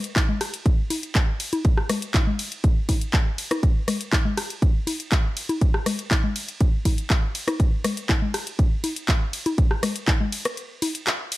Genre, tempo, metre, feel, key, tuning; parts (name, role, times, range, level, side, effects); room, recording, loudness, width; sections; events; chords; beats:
house; 121 BPM; 4/4; straight
house drum kit; drums; 0.0-11.4 s; handclaps, hi-hat, ride cymbal, rim click; -27 LUFS; equal; sidechain pumping on hats, sidechain pumping on cymbals
electronic kick drum; drums; 0.2-10.2 s; -20 LUFS; equal
electronic congas and rim click; percussion; 0.2-10.9 s; -27 LUFS; left 3 dB; overdrive, sidechain pumping on perc, sidechain pumping on snare
digital ambience; -21 LUFS; side -18 dB against mid
0.0-11.4 A section
break 10.6-11.4
0.16 0.66 1.15 | 1.65 2.14 2.64 3.14 | 3.63 4.13 4.62 5.12 | 5.62 6.11 6.61 7.10 | 7.60 8.10 8.59 9.09 | 9.58 10.08 10.57 11.07